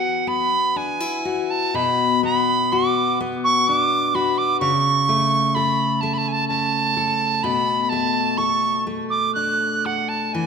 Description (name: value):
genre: celtic folk, Celtic slow air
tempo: 63 BPM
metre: 3/4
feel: rubato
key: unclear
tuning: A4 = 441 Hz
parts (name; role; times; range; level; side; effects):
- bright reedy tin whistle; melody; 0.0-10.5 s; F#5 to F#6; -19 LUFS; right 2 dB; none
- picked steel-string acoustic guitar; accompaniment; 0.0-10.5 s; B2 to A4; -23 LUFS; left 4 dB; none
room: moderate concert hall reverb, RT60 2.3 s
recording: minimal, uncompressed stereo recording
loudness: -18 LUFS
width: side -6 dB against mid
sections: 0.0-10.5 A section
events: none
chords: 0.0 Eadd9; 1.8 Bm; 4.6 A/C#; 7.4 Bm7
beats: 0.77 | 1.75 2.73 3.68 | 4.62 5.56 6.50 | 7.43 8.37 9.36 | 10.35